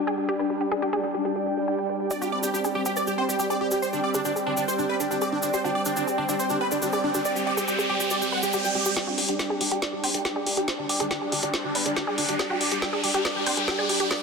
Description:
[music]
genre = psychedelic trance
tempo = 140 BPM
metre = 4/4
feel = straight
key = unclear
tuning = A4 = 441 Hz
[part]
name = bubbling stepped-filter texture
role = sustained chords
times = 0.0-14.2 s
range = G3 to D4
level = -30 LUFS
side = right 1 dB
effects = chorus, built-in reverb
[part]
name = wide unison pluck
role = riff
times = 0.0-14.2 s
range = F#4 to G5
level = -31 LUFS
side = equal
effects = auto-pan, digital delay
[part]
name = warbly tape-like pad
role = texture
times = 0.0-14.2 s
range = G4 to G5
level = -31 LUFS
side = equal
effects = chorus, built-in reverb
[part]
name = dense compressed supersaw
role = melody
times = 2.1-14.2 s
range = D4 to G5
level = -29 LUFS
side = right 1 dB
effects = phaser, low-pass filter, digital delay
[part]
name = tube shaker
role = percussion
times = 2.1-8.9 s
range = none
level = -33 LUFS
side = right 1 dB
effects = none
[part]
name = riser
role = sound effects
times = 6.6-14.2 s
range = none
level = -31 LUFS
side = equal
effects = none
[part]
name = drum and bass drum kit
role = drums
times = 9.0-14.2 s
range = hi-hat, snare drum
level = -27 LUFS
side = left 1 dB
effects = soft clipping on snare
[sound]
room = wet lush hall reverb, RT60 2.2 s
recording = dense, heavily limited modern master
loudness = -23 LUFS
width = side -4 dB against mid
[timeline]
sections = 0.0-9.0 A section; 9.0-14.2 B section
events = riser 6.6-9.0, 9.0-14.2; build-up 9.0-14.2; drum fill 9.0-14.2; filter sweep on synth arpeggio sound 9.0-14.2; filter sweep on supersaw synth 9.0-14.2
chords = 0.0 G5

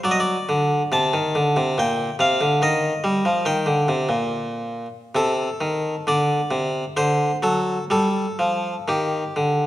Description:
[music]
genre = classical, baroque-style suite movement for harpsichord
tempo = 62-72 BPM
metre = 3/4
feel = rubato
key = G minor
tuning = A4 = 439 Hz
[part]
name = harpsichord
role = solo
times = 0.0-9.7 s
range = Bb2 to A5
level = -19 LUFS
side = equal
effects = none
[sound]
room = wet recital hall reverb, RT60 1.5 s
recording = none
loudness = -19 LUFS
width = side -14 dB against mid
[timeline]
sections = 0.0-9.7 A section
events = none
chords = 0.0 D7; 1.8 Gm/Bb; 2.6 Eb; 5.1 Adim/C; 6.1 Csus2; 7.0 D7; 7.9 G5

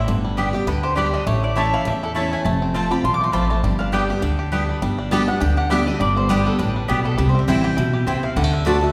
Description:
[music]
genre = bluegrass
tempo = 203 BPM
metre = 4/4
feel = swing 56% on 8ths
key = G mixolydian, G major from 4.8 s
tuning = A4 = 439 Hz
[part]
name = bluegrass banjo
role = melody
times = 0.0-8.9 s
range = D3 to G4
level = -31 LUFS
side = equal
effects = none
[part]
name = mandolin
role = melody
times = 0.0-8.9 s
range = G4 to D6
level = -28 LUFS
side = equal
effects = none
[part]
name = picked steel-string acoustic guitar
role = accompaniment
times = 0.0-8.9 s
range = E2 to G4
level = -24 LUFS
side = equal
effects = none
[part]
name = upright bass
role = bass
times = 0.0-8.8 s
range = F1 to E2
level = -25 LUFS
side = equal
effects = none
[part]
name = mandolin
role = stabs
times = 0.4-8.8 s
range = A3 to A5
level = -28 LUFS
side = equal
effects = none
[sound]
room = wet scoring stage reverb, RT60 1.5 s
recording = recorded in a church or concert hall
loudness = -20 LUFS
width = mono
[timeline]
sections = 0.0-4.8 A section; 4.8-8.9 B section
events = none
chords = 0.1 G; 1.3 A; 2.5 F; 3.6 G; 7.2 C; 8.4 D

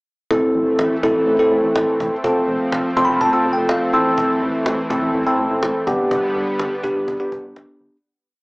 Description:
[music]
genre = synth-pop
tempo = 124 BPM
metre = 4/4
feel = straight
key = A minor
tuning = A4 = 440 Hz
[part]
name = bell-like tine electric piano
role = accompaniment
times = 0.3-8.0 s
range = B3 to C6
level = -17 LUFS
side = equal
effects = phaser, cassette tape
[part]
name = lush unison pad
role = sustained chords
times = 0.5-8.0 s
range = D3 to C4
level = -25 LUFS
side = equal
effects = chorus, cassette tape
[part]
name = rubbery square bass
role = bass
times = 0.3-7.9 s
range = F1 to A1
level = -30 LUFS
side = equal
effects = none
[part]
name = cajon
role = drums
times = 0.3-8.0 s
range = none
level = -27 LUFS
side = equal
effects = cassette tape
[sound]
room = wet spring reverb, RT60 1.3 s, digital ambience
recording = home recording on cassette, small speaker sound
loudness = -16 LUFS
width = side -38 dB against mid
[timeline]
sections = 0.3-8.0 chorus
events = tine electric piano fill 2.7-4.2; fade-out 6.1-8.0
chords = 0.3 Am; 2.2 F; 3.9 Am; 5.9 G

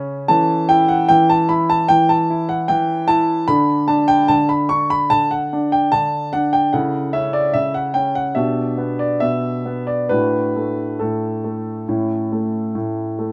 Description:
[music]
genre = classical-period piano sonatina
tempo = 73 BPM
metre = 4/4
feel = uneven beats, rubato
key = D major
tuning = A4 = 440 Hz
[part]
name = warm concert grand piano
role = solo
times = 0.0-13.3 s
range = A2 to C#6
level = -18 LUFS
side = equal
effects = none
[sound]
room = light reverb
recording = none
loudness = -18 LUFS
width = mono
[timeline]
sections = 0.0-13.3 A section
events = none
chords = 0.3 A/E; 3.5 D5; 6.7 A/C#; 8.4 G/B; 10.1 D/A; 11.9 A

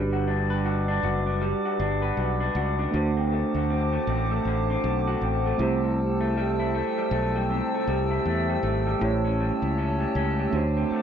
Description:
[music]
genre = indie pop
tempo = 79 BPM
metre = 4/4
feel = swing 60% on 16ths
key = G major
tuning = A4 = 442 Hz
[part]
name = electric guitar through a small old amp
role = accompaniment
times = 0.0-11.0 s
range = A2 to B4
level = -28 LUFS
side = left 2 dB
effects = wide subtle chorus, warbly pitch drift
[part]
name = mellow tine electric piano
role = accompaniment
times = 0.0-11.0 s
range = G3 to C#5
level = -30 LUFS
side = right 5 dB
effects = slow stereo tremolo, cassette tape
[part]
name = warbly tape-like pad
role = sustained chords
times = 0.3-11.0 s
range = B4 to E6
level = -30 LUFS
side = left 1 dB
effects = chorus, built-in reverb
[part]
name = fretless electric bass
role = bass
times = 0.0-10.9 s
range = F#1 to E2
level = -27 LUFS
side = left 1 dB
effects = none
[sound]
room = moderate studio reverb, RT60 0.6 s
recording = dark, warm production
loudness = -23 LUFS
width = side -8 dB against mid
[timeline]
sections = 0.0-11.0 A section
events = none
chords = 0.0 Gmaj7; 2.9 D7; 5.6 C6; 9.0 A7

